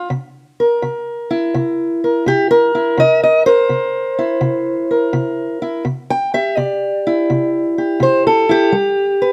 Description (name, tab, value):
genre	acoustic country blues, solo or duo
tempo	83 BPM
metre	4/4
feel	swing 68% on 8ths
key	C mixolydian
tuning	A4 = 445 Hz
part	fingerpicked steel-string acoustic guitar	solo	0.0-9.3 s	C3 to G5	-16 LUFS	equal	none
room	light reverb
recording	none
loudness	-16 LUFS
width	mono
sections	0.0-9.3 A section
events	none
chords	0.1 C7; 8.7 G